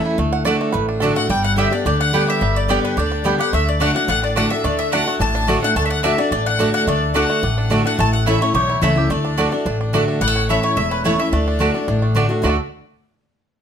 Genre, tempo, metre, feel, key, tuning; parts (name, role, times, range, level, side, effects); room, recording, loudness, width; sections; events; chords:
bluegrass; 215 BPM; 4/4; straight; D major; A4 = 440 Hz
bluegrass banjo; melody; 0.0-12.6 s; G3 to F#5; -25 LUFS; right 4 dB
picked steel-string acoustic guitar; accompaniment; 0.0-12.6 s; E2 to G4; -20 LUFS; equal
upright bass; bass; 0.2-12.6 s; E1 to D2; -22 LUFS; equal
mandolin; stabs; 0.5-12.6 s; A3 to A5; -24 LUFS; right 5 dB
mandolin; melody; 1.2-12.1 s; B4 to A5; -23 LUFS; left 2 dB
rich fiddle; second line; 1.2-12.1 s; B4 to A5; -25 LUFS; left 6 dB
light reverb; -16 LUFS; side -8 dB against mid
0.0-1.3 A section; 1.3-10.2 B section; 10.2-12.4 C section; 12.4-13.6 D section
five-string banjo solo 0.0-1.3
0.2 D; 1.3 G; 3.5 D; 8.0 A; 9.1 D; 10.2 A; 11.3 D